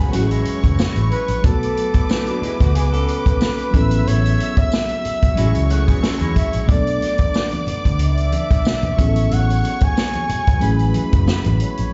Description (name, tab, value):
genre	lush 1970s-style soul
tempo	91 BPM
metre	4/4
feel	swing 54% on 16ths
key	B dorian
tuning	A4 = 440 Hz
part	warm studio violin section	second line	0.0-11.9 s	B4 to E6	-33 LUFS	equal	slapback echo
part	mellow reed electric piano	accompaniment	0.0-11.9 s	F#3 to A4	-27 LUFS	equal	fast tremolo, slapback echo
part	warm French horn section	sustained chords	0.0-11.9 s	B2 to D4	-36 LUFS	equal	none
part	electric guitar through a small old amp	riff	0.0-6.7 s	E3 to A4	-31 LUFS	equal	phaser, slapback echo
part	vintage muted fingered electric bass	bass	0.0-11.9 s	F#1 to E2	-21 LUFS	equal	none
part	vintage drum kit	drums	0.1-11.9 s	hi-hat, kick drum, snare drum	-21 LUFS	equal	none
part	tambourine	percussion	0.8-11.5 s	none	-42 LUFS	equal	none
part	breathy flugelhorn	melody	1.1-11.9 s	A4 to G#5	-27 LUFS	equal	slapback echo
part	congas	percussion	6.7-11.6 s	none	-29 LUFS	equal	none
room	small room reverb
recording	live gig heard through the venue's PA, club reverb, nothing above 7.7 kHz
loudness	-18 LUFS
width	mono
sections	0.0-11.9 A section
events	none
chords	0.1 F#m9; 1.4 Bm7; 3.7 A69; 5.4 F#m9/A; 6.7 Bm7; 9.0 A69; 10.6 F#m9